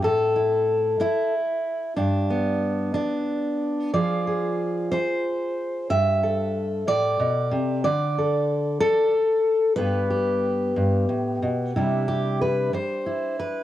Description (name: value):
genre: folk, solo fingerstyle acoustic guitar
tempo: 61 BPM (dotted quarters)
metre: 6/8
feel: rubato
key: C major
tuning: A4 = 440 Hz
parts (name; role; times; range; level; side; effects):
- fingerpicked steel-string acoustic guitar; solo; 0.0-13.6 s; G2 to E5; -21 LUFS; equal; none
room: moderate spring reverb, RT60 2.3 s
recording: home recording on cassette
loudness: -21 LUFS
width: side -13 dB against mid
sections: 0.0-11.7 A section; 11.7-13.6 B section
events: none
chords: 0.0 A5; 2.0 G; 3.9 Fm; 5.9 Gsus2; 7.8 D5; 9.8 G; 11.7 Cadd9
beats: | 0.03 1.00 | 1.97 2.95 | 3.94 4.92 | 5.90 6.88 | 7.84 8.81 | 9.77 10.75 | 11.75 12.73